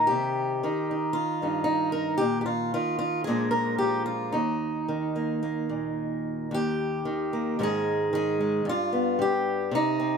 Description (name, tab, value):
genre	folk, solo fingerstyle acoustic guitar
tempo	113 BPM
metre	4/4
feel	rubato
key	Eb major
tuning	A4 = 440 Hz
part	fingerpicked acoustic archtop guitar	solo	0.0-10.2 s	Eb2 to Bb4	-24 LUFS	equal	none
room	moderate studio reverb, RT60 0.8 s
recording	none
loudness	-25 LUFS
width	side -6 dB against mid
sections	0.0-6.5 A section; 6.5-10.2 B section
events	none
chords	0.1 Cm; 2.2 Bbsus4; 3.3 Bb7; 4.3 Eb5; 7.6 Ab5; 8.7 G7